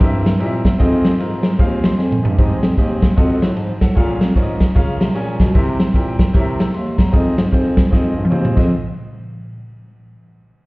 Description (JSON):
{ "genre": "uptempo gospel", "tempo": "152 BPM", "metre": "4/4", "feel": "swing 62% on 8ths", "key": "F minor", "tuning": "A4 = 440 Hz", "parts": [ { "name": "clear grand piano", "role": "accompaniment", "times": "0.0-8.7 s", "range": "F2 to E6", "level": "-23 LUFS", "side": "equal", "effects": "none" }, { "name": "warm bass clarinet", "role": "bass", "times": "0.0-8.7 s", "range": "Eb2 to Db3", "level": "-21 LUFS", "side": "equal", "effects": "none" }, { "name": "swinging big-band drum kit", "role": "drums", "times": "0.0-8.6 s", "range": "crash cymbal, kick drum, ride cymbal, snare drum, toms", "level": "-15 LUFS", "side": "equal", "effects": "none" } ], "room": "moderate echo chamber reverb, RT60 1.5 s", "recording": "heard muffled through a wall, stone room reverb, EQ", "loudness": "-13 LUFS", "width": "side -23 dB against mid", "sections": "0.0-2.4 A section; 2.4-8.7 B section; 8.7-10.3 C section", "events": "drum fill 2.0-2.4, 7.9-8.7", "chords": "0.0 C7; 0.8 Fm7; 3.2 F7b9; 4.0 Bbm7; 5.6 C7; 7.1 Fm7; 8.7 N.C." }